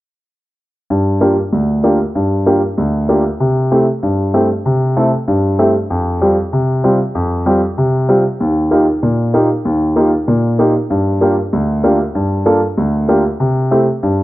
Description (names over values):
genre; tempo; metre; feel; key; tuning
dancehall; 96 BPM; 4/4; straight; G minor; A4 = 440 Hz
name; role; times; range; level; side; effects
clear grand piano; accompaniment; 0.9-14.2 s; D2 to A4; -12 LUFS; equal; none
room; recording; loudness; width
light reverb, small room ambience; dry, gritty hardware recording, transformer saturation, low-pass filter; -12 LUFS; side -17 dB against mid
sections
0.9-14.2 A section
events
filter sweep 0.9-14.2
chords
0.9 Gm7; 3.4 C6; 5.9 Fsus2; 8.4 Ebadd9; 10.9 Gm7; 13.4 C6